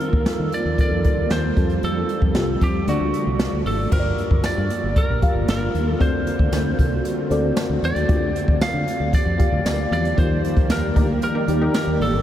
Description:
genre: 1980s-style pop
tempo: 115 BPM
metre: 4/4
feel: straight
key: G minor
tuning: A4 = 440 Hz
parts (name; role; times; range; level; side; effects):
- lightly driven lead guitar; melody; 0.0-12.2 s; F#4 to F5; -26 LUFS; right 1 dB; tape echo
- FM electric piano with soft pad layer; accompaniment; 0.0-12.2 s; G2 to F5; -25 LUFS; left 1 dB; chorus, phaser
- shimmering ambient pad; sustained chords; 0.0-12.2 s; C3 to D5; -27 LUFS; equal; chorus, built-in reverb
- jazz brush drum kit; drums; 0.0-12.1 s; crash cymbal, hi-hat, kick drum, snare drum, tambourine; -22 LUFS; equal; none
- fingered electric bass; bass; 0.1-12.2 s; G1 to Eb3; -24 LUFS; equal; none
- funky polysynth comp; stabs; 11.0-12.0 s; Eb4 to Bb4; -28 LUFS; left 1 dB; chorus
room: moderate huge ambient reverb, RT60 7.7 s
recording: dreamy mix soaked in reverb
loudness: -18 LUFS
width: side -11 dB against mid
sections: 0.0-3.9 A section; 3.9-12.2 B section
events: band accent 10.2-12.2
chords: 0.0 Ebadd9; 1.6 Fadd9; 2.9 D; 3.9 Gm7; 6.0 D7; 8.1 Gm7/D; 10.2 Ebmaj7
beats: 0.27 0.79 1.31 | 1.83 2.35 2.87 3.40 | 3.92 4.44 4.96 5.48 | 6.00 6.53 7.05 7.57 | 8.09 8.61 9.13 9.66 | 10.18 10.70 11.22 11.74

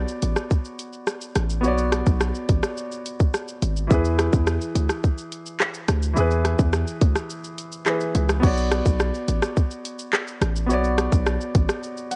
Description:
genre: dancehall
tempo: 106 BPM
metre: 4/4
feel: straight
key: B dorian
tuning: A4 = 440 Hz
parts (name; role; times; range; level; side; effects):
- clear baby grand piano; accompaniment; 0.0-12.2 s; E3 to F#5; -30 LUFS; equal; none
- hard-hitting 808-style bass; bass; 0.0-11.7 s; G#1 to E2; -25 LUFS; equal; none
- island pop drum kit; drums; 0.1-12.2 s; crash cymbal, handclaps, hi-hat, kick drum, rim click, shaker; -25 LUFS; equal; none
room: little or no reverb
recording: worn, warbling old tape, cassette tape, warbly pitch drift, nothing above 10.6 kHz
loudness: -23 LUFS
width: mono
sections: 0.0-8.4 A section; 8.4-12.2 B section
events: break 7.3-8.4; grand piano fill 11.8-12.2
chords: 0.0 Bmadd9; 3.9 E; 8.4 Bmadd9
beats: 0.51 1.08 | 1.64 2.21 2.77 3.34 | 3.91 4.47 5.04 5.60 | 6.17 6.74 7.30 7.87 | 8.44 9.00 9.57 10.13 | 10.70 11.27 11.83

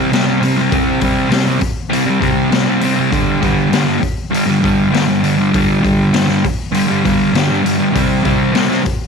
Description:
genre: garage rock duo or trio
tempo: 100 BPM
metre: 4/4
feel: straight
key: unclear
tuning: A4 = 441 Hz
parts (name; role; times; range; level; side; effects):
- fuzz guitar; riff; 0.0-8.9 s; G2 to C4; -13 LUFS; equal; distortion
- raw garage drum kit; drums; 0.1-9.0 s; hi-hat, kick drum, snare drum; -19 LUFS; left 3 dB; none
room: little or no reverb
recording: 1960s-style stereo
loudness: -12 LUFS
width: side -5 dB against mid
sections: 0.0-9.1 A section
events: none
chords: 0.0 C5; 3.1 G5; 8.0 C5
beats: 0.12 | 0.72 1.32 1.93 2.53 | 3.13 3.73 4.33 4.93 | 5.54 6.14 6.74 7.35 | 7.95 8.55

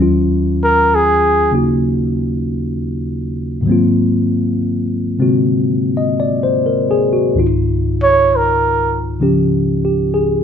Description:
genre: jazz ballad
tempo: 65 BPM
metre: 4/4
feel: swing 69% on 8ths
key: unclear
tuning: A4 = 440 Hz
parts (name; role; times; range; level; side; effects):
- tine electric piano; accompaniment; 0.0-10.4 s; Db2 to Eb5; -14 LUFS; left 1 dB; overdrive
- mellow trumpet; melody; 0.6-1.6, 8.0-9.0 s; Ab4 to Db5; -12 LUFS; right 2 dB; plate reverb
room: moderate club reverb, RT60 0.6 s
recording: none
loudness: -13 LUFS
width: side -8 dB against mid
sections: 0.0-10.4 A section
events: trumpet solo 0.0-10.4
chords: 0.0 Ebm9; 3.7 Ab13; 7.4 Dbadd9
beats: 0.88 1.80 2.73 | 3.65 4.58 5.51 6.44 | 7.37 8.29 9.22 10.15

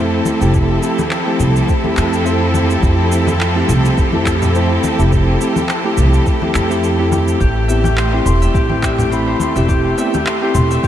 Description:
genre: sunset chillout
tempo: 105 BPM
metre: 4/4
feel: swing 55% on 16ths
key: unclear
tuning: A4 = 440 Hz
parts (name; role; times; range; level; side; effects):
- bell-like tine electric piano; accompaniment; 0.0-10.9 s; A3 to B5; -18 LUFS; equal; auto-pan, analog delay
- bright studio string section; sustained chords; 0.0-10.9 s; F3 to A4; -19 LUFS; equal; none
- upright bass; bass; 0.0-10.7 s; E1 to F2; -16 LUFS; equal; none
- electronic shaker and handclaps; drums; 0.3-10.9 s; none; -26 LUFS; right 1 dB; none
- congas; percussion; 0.3-10.7 s; none; -25 LUFS; left 3 dB; none
- electronic kick drum; drums; 0.5-10.9 s; none; -17 LUFS; equal; none
- concert harp; arpeggios; 7.4-10.9 s; G4 to C6; -21 LUFS; left 4 dB; analog delay
room: moderate huge ambient reverb, RT60 8.2 s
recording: dreamy mix soaked in reverb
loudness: -12 LUFS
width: side -11 dB against mid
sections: 0.0-10.9 A section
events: none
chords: 0.0 Fmaj7; 7.4 Am7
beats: | 0.55 1.12 1.69 2.26 | 2.83 3.41 3.98 4.55 | 5.12 5.69 6.26 6.83 | 7.41 7.98 8.55 9.12 | 9.69 10.26 10.83

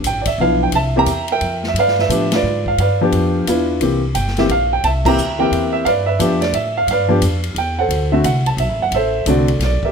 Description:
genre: jazz piano trio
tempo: 176 BPM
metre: 3/4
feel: swing 64% on 8ths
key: G mixolydian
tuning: A4 = 440 Hz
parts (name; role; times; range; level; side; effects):
- upright bass; bass; 0.0-9.9 s; F#1 to A2; -20 LUFS; equal; none
- swinging big-band drum kit; drums; 0.0-9.9 s; crash cymbal, hi-hat, kick drum, ride cymbal, snare drum; -26 LUFS; left 3 dB; none
- dark baby grand piano; melody; 0.1-9.9 s; D3 to Bb5; -16 LUFS; right 1 dB; none
room: light reverb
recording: none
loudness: -14 LUFS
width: side -6 dB against mid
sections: 0.0-9.9 A section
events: band accent 2.3, 5.0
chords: 0.0 G7; 0.7 C7; 1.8 G7; 3.8 C7; 5.9 G7; 7.9 D7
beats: 0.05 0.39 | 0.73 1.07 1.42 | 1.76 2.10 2.44 | 2.78 3.12 3.46 | 3.81 4.15 4.49 | 4.83 5.17 5.51 | 5.86 6.20 6.54 | 6.88 7.22 7.56 | 7.90 8.24 8.59 | 8.93 9.27 9.61

